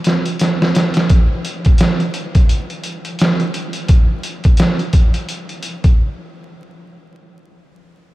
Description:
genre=hip hop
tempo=86 BPM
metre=4/4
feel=swing 59% on 16ths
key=none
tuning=none
part: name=trip hop sampler-style drum kit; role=drums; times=0.0-6.0 s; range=hi-hat, kick drum, snare drum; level=-13 LUFS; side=equal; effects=none
room=light reverb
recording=vinyl crackle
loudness=-13 LUFS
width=side -17 dB against mid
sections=0.0-1.1 A section; 1.1-6.7 B section; 6.7-8.1 C section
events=drum fill 0.0-1.1; break 6.0-6.7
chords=none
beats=0.40 | 1.10 1.80 2.50 3.19 | 3.89 4.59 5.29

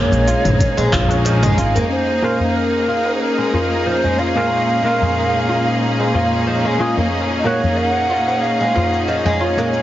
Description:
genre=organic downtempo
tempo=92 BPM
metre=4/4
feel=swing 54% on 16ths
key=Bb minor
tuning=A4 = 440 Hz
part: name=breathy ney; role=melody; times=0.0-9.8 s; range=Bb4 to Gb5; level=-21 LUFS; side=right 1 dB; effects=digital delay
part: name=electric guitar with an envelope filter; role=accompaniment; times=0.0-9.8 s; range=Bb2 to Ab4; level=-23 LUFS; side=equal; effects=sidechain pumping, tape echo
part: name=bright symphonic string section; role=sustained chords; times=0.0-9.8 s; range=Bb2 to Ab4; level=-22 LUFS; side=equal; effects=sidechain pumping
part: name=oud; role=arpeggios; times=0.0-9.7 s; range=F3 to F4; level=-21 LUFS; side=right 1 dB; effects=vintage 12-bit sampler grit, low-pass filter, tape echo
part: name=upright bass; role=bass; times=0.1-1.8 s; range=Ab1 to Bb1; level=-18 LUFS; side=equal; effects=sidechain pumping
part: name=organic electronic drum kit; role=drums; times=0.1-9.8 s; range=cabasa, handclaps, hi-hat, toms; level=-22 LUFS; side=equal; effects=overdrive, low-pass filter on hats, low-pass filter on toms, low-pass filter on perc, low-pass filter on snare, low-pass filter on room
part: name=tabla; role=percussion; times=0.1-9.5 s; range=none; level=-25 LUFS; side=left 1 dB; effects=none
part: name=electronic kick drum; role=drums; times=0.6-1.1 s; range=none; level=-19 LUFS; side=equal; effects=overdrive
part: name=bronze singing bowl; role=texture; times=1.9-9.8 s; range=Db4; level=-29 LUFS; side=left 5 dB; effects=none
room=moderate huge ambient reverb, RT60 4.5 s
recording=heavily compressed radio sound, multiband compression, nothing above 7.5 kHz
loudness=-14 LUFS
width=side -13 dB against mid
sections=0.0-1.9 A section; 1.9-9.8 B section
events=filter sweep on oud 1.9-9.8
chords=0.0 Gbsus2/Bb (rootless); 1.9 Bbm; 7.1 Gbsus2/Bb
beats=0.60 1.26 | 1.91 2.56 3.21 3.86 | 4.52 5.17 5.82 6.47 | 7.12 7.78 8.43 9.08 | 9.73

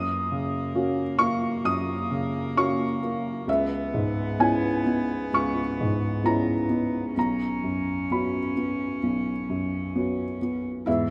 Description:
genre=neoclassical piano and strings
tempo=65 BPM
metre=4/4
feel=rubato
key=B major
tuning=A4 = 441 Hz
part: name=rich cello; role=second line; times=0.0-11.1 s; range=G#2 to C#4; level=-36 LUFS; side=equal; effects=none
part: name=felt-muted upright piano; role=accompaniment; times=0.0-11.1 s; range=B1 to D#6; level=-27 LUFS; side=equal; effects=none
part: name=concert harp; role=arpeggios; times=10.9-11.1 s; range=E4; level=-33 LUFS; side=equal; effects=none
room=moderate lush hall reverb, RT60 2.3 s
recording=rough home demo mix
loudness=-26 LUFS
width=mono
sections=0.0-10.9 A section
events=none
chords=0.0 F#; 3.5 C#m7; 7.2 Bsus2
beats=0.75 1.65 2.57 | 3.48 4.38 5.32 6.23 | 7.15 8.09 9.02 9.94 | 10.87

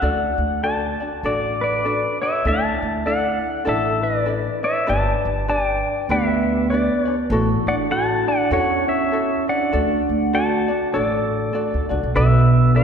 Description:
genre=Hawaiian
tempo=99 BPM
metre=4/4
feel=swing 59% on 8ths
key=D major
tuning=A4 = 439 Hz
part: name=pedal steel guitar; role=melody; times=0.0-12.8 s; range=A4 to A5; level=-21 LUFS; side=left 1 dB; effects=none
part: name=ukulele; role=accompaniment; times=0.0-12.8 s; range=D4 to D5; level=-26 LUFS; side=left 2 dB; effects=none
part: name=upright bass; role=bass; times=0.0-12.8 s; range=G1 to E2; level=-22 LUFS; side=right 1 dB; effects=none
part: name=vibraphone with soft mallets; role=second line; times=6.1-12.8 s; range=A3 to F#4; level=-24 LUFS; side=right 3 dB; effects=none
room=wet concert hall reverb, RT60 1.9 s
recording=recorded in a church or concert hall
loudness=-18 LUFS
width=side -7 dB against mid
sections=0.0-2.4 A section; 2.4-12.1 A section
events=none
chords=0.0 D; 2.4 Dsus2; 4.9 G; 7.3 A6; 9.7 D; 12.1 Bm7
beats=| 0.02 0.63 1.24 1.84 | 2.45 3.06 3.66 4.27 | 4.88 5.48 6.09 6.69 | 7.30 7.91 8.51 9.12 | 9.72 10.33 10.93 11.54 | 12.14 12.74

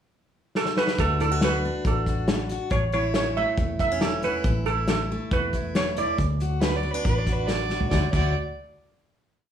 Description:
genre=honky-tonk and classic country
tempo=138 BPM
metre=4/4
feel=straight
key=D major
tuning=A4 = 441 Hz
part: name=steel pan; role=melody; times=0.6-7.5 s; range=A4 to E5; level=-26 LUFS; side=right 3 dB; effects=none
part: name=unplugged drum kit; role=drums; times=0.6-8.2 s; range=crash cymbal, hi-hat, kick drum, snare drum, toms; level=-27 LUFS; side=left 1 dB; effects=none
part: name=picked steel-string acoustic guitar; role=accompaniment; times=1.0-8.3 s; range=E2 to F#4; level=-30 LUFS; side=left 2 dB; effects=none
part: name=vintage muted fingered electric bass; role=bass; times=1.0-8.3 s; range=E1 to D2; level=-27 LUFS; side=equal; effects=none
part: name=rich fiddle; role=second line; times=6.6-8.3 s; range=B4 to D5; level=-29 LUFS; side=right 5 dB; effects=none
room=moderate studio reverb, RT60 0.8 s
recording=studio reverb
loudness=-22 LUFS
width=side -9 dB against mid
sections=0.0-1.0 pickup bar; 1.0-7.9 interlude; 7.9-9.5 final chord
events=drum fill 0.6-1.0, 7.7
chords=0.0 N.C.; 1.0 D; 2.7 A; 6.2 D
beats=0.12 0.55 | 0.98 1.42 1.85 2.28 | 2.72 3.15 3.58 4.02 | 4.45 4.89 5.32 5.75 | 6.19 6.62 7.05 7.49 | 7.92

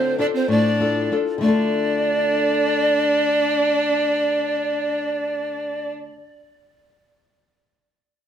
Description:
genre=andean folk, Andean ensemble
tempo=64 BPM (dotted quarters)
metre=6/8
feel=straight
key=D minor pentatonic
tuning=A4 = 440 Hz
part: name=breathy bright polished pan flute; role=melody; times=0.0-5.9 s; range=C5 to D5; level=-22 LUFS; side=left 1 dB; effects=tape echo
part: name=rich violin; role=second line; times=0.0-5.9 s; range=C4 to D4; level=-23 LUFS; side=right 6 dB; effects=none
part: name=flamenco guitar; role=accompaniment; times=0.0-6.2 s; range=A2 to A4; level=-23 LUFS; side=left 4 dB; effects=none
room=moderate small room reverb, RT60 0.5 s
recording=none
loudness=-18 LUFS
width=side -9 dB against mid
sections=0.0-1.4 A section; 1.4-5.2 B section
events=none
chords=0.0 Dm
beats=0.49 | 1.42 2.36 | 3.29 4.23

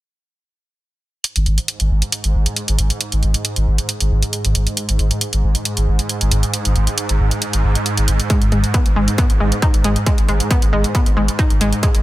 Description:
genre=driving peak-time techno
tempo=136 BPM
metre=4/4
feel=straight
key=unclear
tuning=A4 = 440 Hz
part: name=swarming drone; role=drone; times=1.8-12.0 s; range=G#2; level=-23 LUFS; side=right 1 dB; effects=built-in reverb, sidechain pumping
part: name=electronic hi-hat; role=drums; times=1.2-12.0 s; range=none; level=-22 LUFS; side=right 2 dB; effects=overdrive
part: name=saturated sub bass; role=bass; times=1.4-12.0 s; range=G#1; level=-17 LUFS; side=equal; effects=overdrive, sidechain pumping, low-pass filter
part: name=analog pluck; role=riff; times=8.3-11.9 s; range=G#3 to D#4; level=-21 LUFS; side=left 1 dB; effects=chorus, sidechain pumping, dub echo
part: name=electronic kick drum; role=drums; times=8.3-11.9 s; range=none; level=-16 LUFS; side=equal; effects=distortion, overdrive
part: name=riser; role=sound effects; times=11.8-12.0 s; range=none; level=barely audible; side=none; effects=none
room=digital ambience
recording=none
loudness=-15 LUFS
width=side -16 dB against mid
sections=1.2-12.0 A section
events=none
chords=1.2 G#5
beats=| 1.24 1.68 2.12 2.56 | 3.01 3.45 3.89 4.33 | 4.77 5.21 5.65 6.09 | 6.54 6.98 7.42 7.86 | 8.30 8.74 9.18 9.62 | 10.06 10.51 10.95 11.39 | 11.83

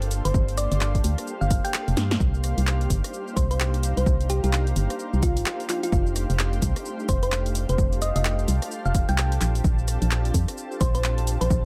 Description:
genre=UK garage, two-step garage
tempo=129 BPM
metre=4/4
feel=swing 60% on 16ths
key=C dorian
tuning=A4 = 440 Hz
part: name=soft string machine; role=sustained chords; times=0.0-11.7 s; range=A3 to A4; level=-39 LUFS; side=equal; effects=ensemble chorus, sidechain pumping
part: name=organ-like FM bass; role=bass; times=0.0-11.7 s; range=F1 to G2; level=-26 LUFS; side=equal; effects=none
part: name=punchy analog drum machine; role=drums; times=0.0-11.6 s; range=cabasa, handclaps, hi-hat, rim click, snare drum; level=-32 LUFS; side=equal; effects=overdrive
part: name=granular cloud pad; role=texture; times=0.0-11.7 s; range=G4 to Bb5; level=-38 LUFS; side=equal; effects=built-in reverb, sidechain pumping
part: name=thumb-piano-like synth pluck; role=melody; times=0.3-11.7 s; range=F4 to G5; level=-33 LUFS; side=equal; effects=chorus, dub echo
part: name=electronic kick drum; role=drums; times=0.3-11.6 s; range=none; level=-26 LUFS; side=equal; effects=overdrive
room=little or no reverb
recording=none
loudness=-24 LUFS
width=mono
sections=0.0-11.7 A section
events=drum fill 2.0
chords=0.0 Gm7; 2.2 Cm7; 5.7 F13; 9.4 Bbmaj7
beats=| 0.34 0.81 1.27 1.74 | 2.20 2.67 3.13 3.60 | 4.06 4.53 4.99 5.46 | 5.92 6.39 6.85 7.32 | 7.79 8.25 8.71 9.18 | 9.64 10.11 10.57 11.04 | 11.51

